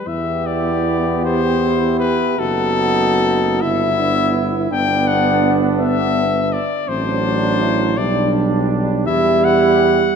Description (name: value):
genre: classical, hymn-like piece for brass band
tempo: 47-56 BPM (dotted quarters)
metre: 6/8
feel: rubato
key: E minor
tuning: A4 = 442 Hz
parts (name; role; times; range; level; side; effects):
- mellow cornet; melody; 0.0-10.2 s; A4 to G5; -20 LUFS; left 6 dB; none
- warm euphonium; accompaniment; 0.0-10.2 s; B3 to G4; -20 LUFS; right 2 dB; none
- mellow flugelhorn; second line; 0.1-10.2 s; D4 to G4; -24 LUFS; right 7 dB; none
- warm trombone; accompaniment; 0.1-10.2 s; F#3 to B3; -23 LUFS; right 4 dB; none
- warm tuba; bass; 0.1-10.2 s; F#1 to E2; -21 LUFS; equal; none
room: wet concert hall reverb, RT60 2.2 s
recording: none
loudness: -14 LUFS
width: side -6 dB against mid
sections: 0.1-10.2 A section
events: none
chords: 0.1 Em; 2.4 B7/F#; 3.6 Em/G; 4.7 G; 6.9 D7/A; 8.0 G/B; 9.1 Em